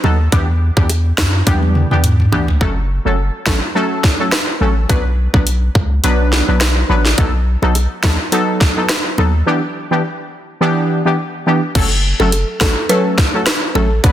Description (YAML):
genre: dancehall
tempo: 105 BPM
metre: 4/4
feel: swing 56% on 16ths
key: F# phrygian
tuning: A4 = 440 Hz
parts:
  - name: synth brass stab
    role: accompaniment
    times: 0.0-14.1 s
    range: E3 to B4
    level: -17 LUFS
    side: equal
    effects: chorus, sidechain pumping
  - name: punchy sub bass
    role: bass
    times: 0.0-14.1 s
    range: F#1 to F#2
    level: -15 LUFS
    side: equal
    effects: none
  - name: bongos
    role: percussion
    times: 0.0-2.5, 7.6-13.9 s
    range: none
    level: -26 LUFS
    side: equal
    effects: none
  - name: island pop drum kit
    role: drums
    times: 0.3-14.1 s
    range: crash cymbal, hi-hat, kick drum, rim click, snare drum, toms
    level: -16 LUFS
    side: equal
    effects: none
  - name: buzzing marimba with medium mallets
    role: melody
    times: 12.2-13.9 s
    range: A4 to B4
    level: -20 LUFS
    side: right 1 dB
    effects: none
room: light reverb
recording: dense, heavily limited modern master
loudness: -12 LUFS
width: side -12 dB against mid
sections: 0.0-2.6 A section; 2.6-11.8 B section; 11.8-14.1 C section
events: drum fill 1.5-2.6; break 9.5-11.8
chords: 0.3 Em7; 2.6 F#m; 4.9 Bm; 7.2 B7; 9.5 Em7; 11.8 F#m